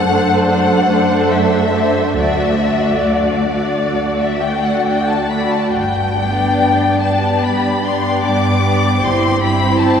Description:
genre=classical, slow romantic movement for string orchestra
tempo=66-77 BPM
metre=4/4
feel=rubato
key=unclear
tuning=A4 = 440 Hz
part: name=rich studio violin section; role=melody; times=0.0-10.0 s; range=D5 to D6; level=-18 LUFS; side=left 3 dB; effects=none
part: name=rich studio violin section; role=second line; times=0.0-10.0 s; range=F#4 to D5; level=-18 LUFS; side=left 2 dB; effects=none
part: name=rich studio viola section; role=accompaniment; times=0.0-10.0 s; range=A3 to E4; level=-19 LUFS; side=right 2 dB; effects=none
part: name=rich studio cello section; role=bass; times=0.0-10.0 s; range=D2 to G2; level=-20 LUFS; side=right 2 dB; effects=none
part: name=dark studio double bass section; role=bass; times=2.2-9.7 s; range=G1 to D2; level=-30 LUFS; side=right 3 dB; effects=none
room=wet cathedral reverb, RT60 5.2 s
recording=recorded in a church or concert hall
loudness=-13 LUFS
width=side -7 dB against mid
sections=0.0-10.0 A section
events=none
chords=0.0 D7/F#; 2.2 D; 5.7 G; 9.0 C/G

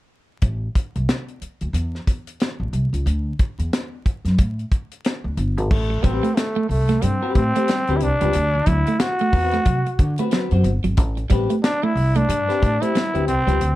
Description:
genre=funk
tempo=91 BPM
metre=4/4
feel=swing 60% on 16ths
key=A dorian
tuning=A4 = 439 Hz
part: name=upright bass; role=bass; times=0.4-13.8 s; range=G1 to D3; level=-21 LUFS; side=equal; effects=none
part: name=tight funk drum kit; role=drums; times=0.4-13.8 s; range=crash cymbal, hi-hat, kick drum, snare drum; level=-21 LUFS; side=equal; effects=none
part: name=growling trombone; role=melody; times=5.7-13.8 s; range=A3 to F#4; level=-22 LUFS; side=equal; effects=plate reverb
part: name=clean electric guitar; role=riff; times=5.9-13.6 s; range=F#3 to A3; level=-25 LUFS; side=right 4 dB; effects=none
part: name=electric guitar at the edge of break-up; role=accompaniment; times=6.0-13.6 s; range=C4 to C5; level=-26 LUFS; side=left 5 dB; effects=none
room=light reverb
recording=dark, warm production, vinyl crackle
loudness=-18 LUFS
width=side -16 dB against mid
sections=0.4-5.7 A section; 5.7-13.8 B section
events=none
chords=0.4 Am; 3.1 D; 5.7 Am9; 8.3 D13; 11.0 Am9

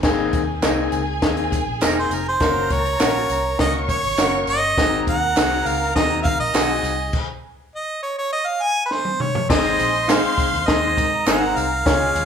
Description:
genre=uptempo 1960s-style soul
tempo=102 BPM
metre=4/4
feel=straight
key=Ab mixolydian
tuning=A4 = 440 Hz
part: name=warm studio violin section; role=second line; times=0.0-12.2 s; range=Ab4 to Db6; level=-27 LUFS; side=equal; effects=none
part: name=clear baby grand piano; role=accompaniment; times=0.0-12.2 s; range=Ab3 to Db5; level=-24 LUFS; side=left 5 dB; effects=none
part: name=vintage muted fingered electric bass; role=bass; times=0.0-12.2 s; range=Fb1 to Ab2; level=-29 LUFS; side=equal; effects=none
part: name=compact cocktail drum kit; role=drums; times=0.0-12.2 s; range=crash cymbal, hi-hat, kick drum, snare drum, toms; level=-22 LUFS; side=equal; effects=none
part: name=tambourine and handclaps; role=percussion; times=0.0-12.2 s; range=none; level=-32 LUFS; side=right 5 dB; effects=none
part: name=electric guitar through a small old amp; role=stabs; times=0.6-11.4 s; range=C4 to C5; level=-26 LUFS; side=right 3 dB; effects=none
part: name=bright harmonica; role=melody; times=1.8-12.2 s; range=Bb4 to Ab5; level=-21 LUFS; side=right 1 dB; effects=none
room=moderate large studio reverb, RT60 1.1 s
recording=band playing live in one room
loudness=-17 LUFS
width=side -7 dB against mid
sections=0.0-9.5 A section; 9.5-12.2 B section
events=harmonica solo 0.0-9.5; stop 7.1-9.5; drum fill 8.9-9.5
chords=0.0 Abadd9; 2.4 Gb; 4.8 Ab7; 7.1 N.C.; 9.5 Ab

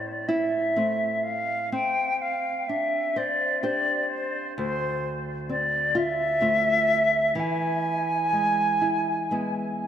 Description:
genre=celtic folk, Celtic slow air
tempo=42 BPM (dotted quarters)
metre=6/8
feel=rubato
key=A minor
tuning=A4 = 440 Hz
part: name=bright wooden flute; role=melody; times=0.0-9.8 s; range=C5 to G#5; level=-24 LUFS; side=equal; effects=diffuse ambient delay
part: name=nylon-string guitar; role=accompaniment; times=0.0-9.9 s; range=D2 to C5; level=-29 LUFS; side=equal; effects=none
room=wet church reverb, RT60 2.9 s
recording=dreamy mix soaked in reverb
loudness=-23 LUFS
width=side -9 dB against mid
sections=0.0-9.9 A section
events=none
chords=0.0 Am; 1.7 Csus2; 4.6 Dm7; 7.4 E

